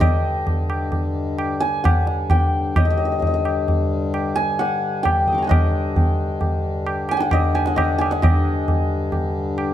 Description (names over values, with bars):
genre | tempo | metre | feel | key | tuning
indian classical, Hindustani | 132 BPM | 3/4 | straight | G raga todi | A4 = 440 Hz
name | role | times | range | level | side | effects
santur | melody | 0.0-9.7 s | Eb5 to Eb6 | -23 LUFS | left 1 dB | none
pedal harmonium | drone | 0.0-9.7 s | G2 to D3 | -26 LUFS | left 3 dB | none
tabla | percussion | 0.0-9.7 s | none | -20 LUFS | right 1 dB | none
room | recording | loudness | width
light reverb | close, detailed microphones | -18 LUFS | side -11 dB against mid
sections
0.0-8.2 A section; 8.2-9.7 B section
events
none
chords
none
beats
| 0.00 0.46 0.92 | 1.38 1.84 2.30 | 2.76 3.22 3.67 | 4.13 4.59 5.04 | 5.50 5.95 6.41 | 6.86 7.32 7.77 | 8.22 8.68 9.13 | 9.58